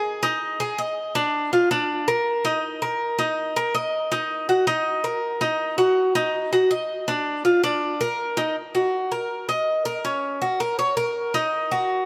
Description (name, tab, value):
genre	latin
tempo	162 BPM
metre	4/4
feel	straight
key	Eb minor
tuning	A4 = 444 Hz
part	Cuban tres	solo	0.0-12.1 s	Db4 to Eb5	-23 LUFS	equal	none
room	wet plate reverb, RT60 3.1 s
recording	heard from further back in the room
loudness	-23 LUFS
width	mono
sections	0.0-8.6 A section; 8.6-12.1 B section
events	none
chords	none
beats	0.04 0.41 0.78 | 1.15 1.52 1.89 2.26 | 2.63 3.00 3.37 3.74 | 4.11 4.48 4.85 5.22 | 5.59 5.96 6.33 6.70 | 7.07 7.45 7.82 8.19 | 8.56 8.93 9.30 9.67 | 10.04 10.41 10.79 11.16 | 11.53 11.90